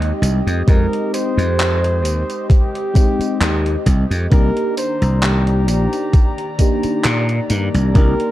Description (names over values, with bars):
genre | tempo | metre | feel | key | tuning
vaporwave | 66 BPM | 4/4 | swing 54% on 16ths | C minor | A4 = 439 Hz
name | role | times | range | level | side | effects
FM electric piano with soft pad layer | accompaniment | 0.0-8.3 s | Ab3 to G4 | -22 LUFS | left 1 dB | phaser, analog chorus, vintage 12-bit sampler grit, analog delay
warbly tape-like pad | sustained chords | 0.0-8.3 s | Eb3 to C6 | -28 LUFS | left 1 dB | chorus, built-in reverb, phaser
slap bass | bass | 0.0-8.1 s | Bb1 to Bb2 | -16 LUFS | equal | none
gated 80s digital drum machine | drums | 0.0-8.3 s | handclaps, hi-hat, tambourine | -24 LUFS | equal | gated reverb, overdrive
warm flugelhorn | melody | 0.7-8.3 s | G4 to C5 | -24 LUFS | equal | tape echo
electronic kick drum | drums | 0.7-8.2 s | none | -12 LUFS | equal | overdrive
room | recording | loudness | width
digital ambience | dark, warm production, cassette tape | -14 LUFS | side -14 dB against mid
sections
0.0-8.3 A section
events
none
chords
0.0 Fm9; 4.3 Cm9